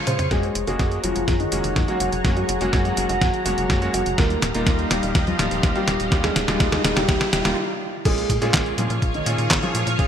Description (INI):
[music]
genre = italo disco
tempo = 124 BPM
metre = 4/4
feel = straight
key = unclear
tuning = A4 = 436 Hz
[part]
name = string machine, full ensemble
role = sustained chords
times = 0.0-10.1 s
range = Bb3 to Db6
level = -28 LUFS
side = equal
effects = ensemble chorus
[part]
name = clear electric grand piano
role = stabs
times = 0.0-10.1 s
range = Bb2 to Ab4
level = -28 LUFS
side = equal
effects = low-pass filter
[part]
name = dark baby grand piano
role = melody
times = 0.1-10.0 s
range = Eb3 to C5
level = -25 LUFS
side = equal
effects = lush chorus, low-pass filter, ping-pong delay
[part]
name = tight sequencer bass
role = bass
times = 0.1-10.1 s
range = Eb1 to Db3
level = -27 LUFS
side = equal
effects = none
[part]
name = detuned 8-bit digital drum machine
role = drums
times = 0.1-10.1 s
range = crash cymbal, handclaps, hi-hat, snare drum, toms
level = -24 LUFS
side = equal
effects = none
[part]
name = electronic kick drum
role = drums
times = 0.3-10.1 s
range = none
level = -23 LUFS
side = equal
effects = none
[part]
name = riser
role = sound effects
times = 4.4-7.6 s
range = none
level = -33 LUFS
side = right 1 dB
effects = none
[sound]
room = moderate plate reverb, RT60 2.3 s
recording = bright 1980s-style digital production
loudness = -18 LUFS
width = side -8 dB against mid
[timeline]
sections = 0.3-8.1 A section; 8.1-10.1 B section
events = drum fill 0.0-0.3, 0.3-7.6; filter sweep on string machine 0.3-8.1; filter sweep on grand piano 0.3-8.1; stop 7.6-8.1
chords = 0.3 Gbadd9; 4.2 Ebadd9; 8.1 Bbm7